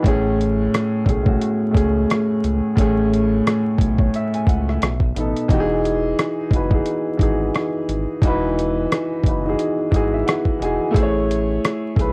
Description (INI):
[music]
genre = lo-fi hip hop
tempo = 88 BPM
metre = 4/4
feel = swing 58% on 16ths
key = E major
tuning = A4 = 439 Hz
[part]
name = warm upright piano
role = accompaniment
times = 0.0-12.1 s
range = A2 to G#5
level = -22 LUFS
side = equal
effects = cassette tape, low-pass filter, plate reverb
[part]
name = round analog bass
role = bass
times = 0.0-12.1 s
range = E1 to C#2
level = -26 LUFS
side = equal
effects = none
[part]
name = dusty soul sampler-style drum kit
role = drums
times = 0.0-12.1 s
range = hi-hat, kick drum, rim click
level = -21 LUFS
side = equal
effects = overdrive
[sound]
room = moderate studio reverb, RT60 0.5 s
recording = worn, warbling old tape, cassette tape, vinyl crackle, warbly pitch drift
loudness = -19 LUFS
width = mono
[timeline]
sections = 0.0-12.1 A section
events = upright piano fill 9.6-10.9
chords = 0.0 Amaj7; 4.8 B7; 5.5 Emaj9; 10.9 Amaj7